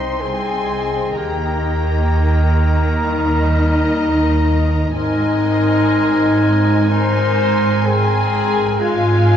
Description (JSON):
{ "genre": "cinematic, emotional film score for orchestra", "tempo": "63 BPM", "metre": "4/4", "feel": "rubato", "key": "Ab major", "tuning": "A4 = 441 Hz", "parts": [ { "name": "muted symphonic violin section", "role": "melody", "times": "0.0-9.4 s", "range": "Ab5 to C6", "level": "-29 LUFS", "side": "left 3 dB", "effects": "none" }, { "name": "bright clarinet", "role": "second line", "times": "0.0-9.4 s", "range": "G3 to Eb4", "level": "-28 LUFS", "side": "left 2 dB", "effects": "none" }, { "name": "mellow flute section", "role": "second line", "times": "0.0-9.4 s", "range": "Bb5 to C6", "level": "-29 LUFS", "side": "left 1 dB", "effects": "none" }, { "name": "muted studio violin section", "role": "second line", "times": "0.0-9.4 s", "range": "Eb5 to C6", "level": "-27 LUFS", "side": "left 1 dB", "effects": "none" }, { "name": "warm cor anglais", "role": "second line", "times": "0.0-9.4 s", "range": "Bb4 to Ab5", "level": "-26 LUFS", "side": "equal", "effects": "none" }, { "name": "muted studio viola section", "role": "accompaniment", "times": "0.0-9.4 s", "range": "C4 to C5", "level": "-28 LUFS", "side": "right 2 dB", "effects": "none" }, { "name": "mellow French horn section", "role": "sustained chords", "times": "0.0-9.4 s", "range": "Eb4 to C5", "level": "-19 LUFS", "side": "left 2 dB", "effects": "none" }, { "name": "muted symphonic cello section", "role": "bass", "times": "0.0-9.4 s", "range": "Ab2 to Eb3", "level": "-21 LUFS", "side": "right 2 dB", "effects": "none" }, { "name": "muted symphonic double bass section", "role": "bass", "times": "0.0-9.4 s", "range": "Ab1 to Eb2", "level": "-20 LUFS", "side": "right 1 dB", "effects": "none" } ], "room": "wet recital hall reverb, RT60 1.6 s", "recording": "heard from further back in the room, nothing above 7.7 kHz", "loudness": "-14 LUFS", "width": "side -9 dB against mid", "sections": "0.0-9.4 A section", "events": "none", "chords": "0.0 Cm; 1.2 Eb; 5.0 Abadd9; 8.8 Fm/Ab", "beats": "0.22 | 1.17 2.11 3.05 4.00 | 4.96 5.91 6.90 7.86 | 8.81" }